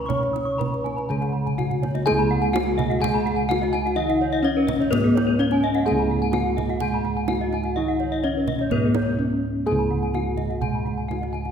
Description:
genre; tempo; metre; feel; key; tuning
Balinese gamelan; 126 BPM; 4/4; straight; Db slendro; A4 = 441 Hz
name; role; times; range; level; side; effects
gamelan-type bronze metallophone; melody; 0.0-11.5 s; Cb4-45c to Db5; -26 LUFS; left 3 dB; none
gamelan-type bronze metallophone; accompaniment; 0.0-11.5 s; Eb3+30c to Db4; -30 LUFS; right 6 dB; none
gamelan-type bronze metallophone; arpeggios; 0.0-11.4 s; Cb5-45c to Db6; -28 LUFS; left 4 dB; none
gamelan-type bossed gongs; bass; 0.0-11.5 s; Db2 to Db5; -25 LUFS; right 1 dB; none
kendang; percussion; 0.1-11.5 s; none; -31 LUFS; right 4 dB; none
gamelan-type bronze metallophone; arpeggios; 0.2-11.5 s; Ab4+25c to Eb6+30c; -31 LUFS; right 3 dB; none
room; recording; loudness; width
wet concert hall reverb, RT60 1.9 s; heard from further back in the room; -20 LUFS; side -7 dB against mid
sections
0.0-2.1 A section; 2.1-11.5 B section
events
drum fill 1.5-2.1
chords
none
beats
| 0.09 0.60 1.10 1.58 | 2.06 2.54 3.02 3.49 | 3.97 4.44 4.92 5.39 | 5.87 6.34 6.82 7.29 | 7.77 8.24 8.72 9.19 | 9.67 10.14 10.62 11.09

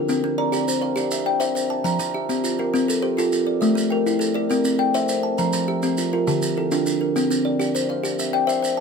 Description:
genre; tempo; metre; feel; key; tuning
southern african traditional, mbira-style interlocking cycle; 136 BPM (dotted quarters); 12/8; straight; C mixolydian; A4 = 439 Hz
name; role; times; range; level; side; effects
kalimba; arpeggios; 0.0-8.8 s; D3 to G5; -22 LUFS; left 4 dB; none
kalimba; arpeggios; 0.0-8.8 s; D3 to Bb5; -23 LUFS; right 4 dB; none
maracas; percussion; 0.1-8.8 s; none; -30 LUFS; right 4 dB; none
room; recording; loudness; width
moderate studio reverb, RT60 0.6 s; none; -19 LUFS; side -5 dB against mid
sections
0.1-8.8 A section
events
none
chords
0.1 C; 1.9 F; 3.6 A5; 4.5 C; 5.4 F; 6.3 Dm; 7.2 C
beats
| 0.09 0.53 0.97 1.42 | 1.86 2.30 2.74 3.18 | 3.62 4.06 4.50 4.95 | 5.39 5.83 6.27 6.71 | 7.16 7.60 8.04 8.48

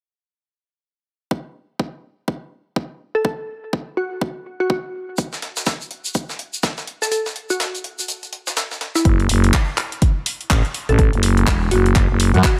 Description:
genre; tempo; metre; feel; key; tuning
bass house; 124 BPM; 4/4; swing 60% on 16ths; F# minor; A4 = 440 Hz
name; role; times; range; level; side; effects
electronic kick drum; drums; 1.3-12.6 s; none; -21 LUFS; equal; high-pass filter on kick, high-pass filter on room
glassy wavetable pluck; melody; 3.1-12.5 s; E4 to A4; -26 LUFS; equal; chorus, dub echo
breakbeat sampler-style drum kit; drums; 5.2-9.0 s; hi-hat, snare drum; -28 LUFS; equal; high-pass filter on hats, high-pass filter on snare
tube shaker; percussion; 5.2-9.0 s; none; -28 LUFS; equal; none
growling FM bass; bass; 9.1-12.4 s; E1 to F#2; -18 LUFS; equal; tube saturation, sidechain pumping
house drum kit; drums; 9.1-12.6 s; handclaps, hi-hat; -25 LUFS; equal; none
room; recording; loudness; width
little or no reverb; none; -21 LUFS; mono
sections
1.3-9.1 A section; 9.1-12.6 B section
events
kick drops out 7.1-9.1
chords
1.3 N.C.; 9.1 F#5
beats
| 1.31 1.79 2.28 2.76 | 3.25 3.73 4.21 4.70 | 5.18 5.67 6.15 6.63 | 7.12 7.60 8.09 8.57 | 9.05 9.54 10.02 10.50 | 10.99 11.47 11.96 12.44

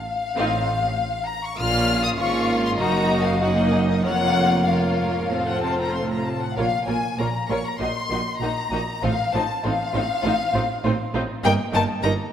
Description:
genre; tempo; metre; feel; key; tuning
quick classical-period movement for string orchestra; 98 BPM; 4/4; rubato; unclear; A4 = 442 Hz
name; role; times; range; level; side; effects
rich chamber violin section; melody; 0.0-12.1 s; Eb5 to F6; -25 LUFS; left 4 dB; none
rich chamber violin section; second line; 0.4-12.1 s; F4 to F5; -27 LUFS; left 1 dB; none
rich studio viola section; accompaniment; 0.4-12.1 s; Bb3 to F4; -27 LUFS; right 1 dB; none
rich chamber cello section; bass; 0.4-12.1 s; F2 to C3; -28 LUFS; right 2 dB; none
warm chamber double bass section; bass; 0.4-12.1 s; F1 to Bb1; -28 LUFS; right 2 dB; none
room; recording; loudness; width
wet concert hall reverb, RT60 2.1 s; none; -20 LUFS; side -9 dB against mid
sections
0.0-12.3 A section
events
none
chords
0.0 F7/A; 1.6 Bbm; 2.8 Ebm/Gb; 4.0 Bbm/F; 5.3 F; 6.6 Bbm; 7.8 Eb5/Bb; 9.0 F7/A; 11.4 Eb/G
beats
0.36 0.97 | 1.57 2.17 2.78 3.40 | 4.03 4.67 5.31 5.94 | 6.57 7.19 7.80 8.41 | 9.03 9.64 10.24 10.84 | 11.44 12.04

